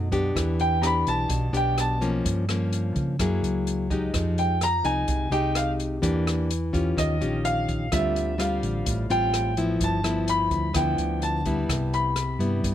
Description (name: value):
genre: bossa nova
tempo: 127 BPM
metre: 4/4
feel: straight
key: unclear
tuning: A4 = 439 Hz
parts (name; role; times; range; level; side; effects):
- nylon-string guitar; accompaniment; 0.0-12.7 s; G2 to G#4; -26 LUFS; left 2 dB; none
- hollow-body short-scale fingered electric bass; bass; 0.0-12.7 s; G1 to Db3; -28 LUFS; right 1 dB; none
- open jazz drum kit; drums; 0.1-12.7 s; hi-hat, kick drum, rim click; -31 LUFS; equal; none
- warm grand piano; melody; 0.6-12.4 s; Eb5 to B5; -26 LUFS; equal; none
room: little or no reverb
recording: close, detailed microphones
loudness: -22 LUFS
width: side -11 dB against mid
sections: 0.0-12.7 A section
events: grand piano solo 0.0-12.7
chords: 0.4 Em7; 2.2 Gm7b5; 3.2 F#9; 4.1 Fm9; 6.0 Em7b5; 7.0 Eb9; 7.9 Dm11; 9.8 G13; 11.7 Cmaj7